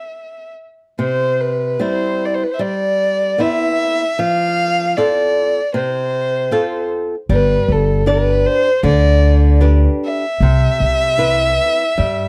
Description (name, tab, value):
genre	fado-style ballad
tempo	76 BPM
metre	4/4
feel	rubato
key	C major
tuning	A4 = 437 Hz
part	warm violin	melody	0.0-12.3 s	A4 to F5	-19 LUFS	equal	slapback echo
part	flamenco guitar	accompaniment	1.0-12.3 s	C3 to D5	-22 LUFS	equal	none
part	upright bass	bass	7.3-12.3 s	G1 to G2	-16 LUFS	equal	none
room	little or no reverb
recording	dry, close 1970s-style studio recording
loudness	-16 LUFS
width	mono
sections	1.0-12.3 A section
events	stop 0.0-1.0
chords	0.0 N.C.; 1.0 Cmaj7; 4.2 F; 7.3 G; 10.4 Cmaj7